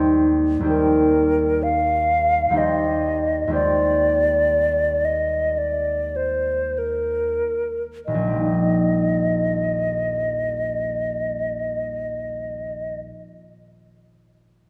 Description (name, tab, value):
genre	classical, impressionist duo for flute and harp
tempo	44-74 BPM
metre	4/4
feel	rubato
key	Eb major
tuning	A4 = 440 Hz
part	concert harp	accompaniment	0.0-13.3 s	Eb1 to C5	-25 LUFS	equal	none
part	hollow concert flute	melody	0.7-13.0 s	Bb4 to F5	-23 LUFS	equal	none
room	moderate concert hall reverb, RT60 2.4 s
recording	none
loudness	-21 LUFS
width	mono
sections	0.0-8.1 A section; 8.1-13.1 B section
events	slowing down 0.0-8.1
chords	0.0 Eb6; 3.5 Fm9/Eb; 8.1 Ebadd9